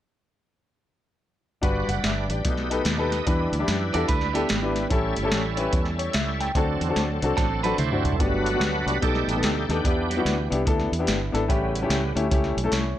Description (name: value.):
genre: uptempo gospel.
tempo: 146 BPM.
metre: 4/4.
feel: swing 64% on 8ths.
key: G major.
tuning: A4 = 441 Hz.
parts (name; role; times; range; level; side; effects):
warm grand piano; accompaniment; 1.6-13.0 s; G2 to G5; -26 LUFS; left 3 dB; none.
bright tonewheel organ; sustained chords; 1.6-12.1 s; C#3 to D#5; -29 LUFS; right 2 dB; slow rotary speaker, overdrive, chorus vibrato.
fingered electric bass; bass; 1.6-12.9 s; F#1 to F#2; -28 LUFS; equal; none.
soft vintage rhythm box; drums; 1.6-12.8 s; hi-hat, kick drum, snare drum, toms; -27 LUFS; equal; none.
clean electric guitar; second line; 3.9-4.9, 7.4-8.2 s; B3 to D5; -28 LUFS; right 8 dB; warbly pitch drift.
mellow French horn section; sustained chords; 8.2-13.0 s; F#3 to G4; -36 LUFS; right 3 dB; none.
room: digital ambience.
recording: none.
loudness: -21 LUFS.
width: side -12 dB against mid.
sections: 1.6-8.2 A section; 8.2-13.0 B section.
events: drum fill 7.4-8.2; tonewheel organ solo 8.2-13.0.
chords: 1.6 Gmaj7; 2.4 Baug7; 3.3 Em7; 4.9 A7; 6.6 D7; 8.2 Gmaj7; 9.0 B7alt; 9.8 Em7; 11.5 A7.